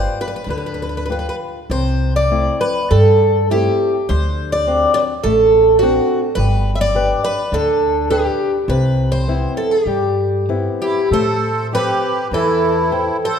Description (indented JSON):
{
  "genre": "fado-style ballad",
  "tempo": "102 BPM",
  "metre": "4/4",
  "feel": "uneven beats, rubato",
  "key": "C major",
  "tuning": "A4 = 442 Hz",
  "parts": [
    { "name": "picked twelve-string acoustic guitar", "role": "melody", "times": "0.0-13.4 s", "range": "F#4 to E5", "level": "-16 LUFS", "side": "right 1 dB", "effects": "none" },
    { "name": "flamenco guitar", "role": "accompaniment", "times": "0.0-13.4 s", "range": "C3 to C5", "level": "-23 LUFS", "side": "left 5 dB", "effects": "none" },
    { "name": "upright bass", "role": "bass", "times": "0.0-13.1 s", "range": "G1 to A2", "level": "-19 LUFS", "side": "equal", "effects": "none" },
    { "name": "accordion", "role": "second line", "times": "10.8-13.4 s", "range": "E4 to A4", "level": "-20 LUFS", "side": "right 4 dB", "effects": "light tremolo tuning" }
  ],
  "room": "moderate concert hall reverb, RT60 1.8 s",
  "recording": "minimal, uncompressed stereo recording",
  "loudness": "-14 LUFS",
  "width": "side -7 dB against mid",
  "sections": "0.0-11.1 A section; 11.1-13.4 B section",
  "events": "none",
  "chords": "0.0 G7; 1.7 C6; 4.1 D7; 6.4 G; 8.7 Cmaj7; 11.1 Am7"
}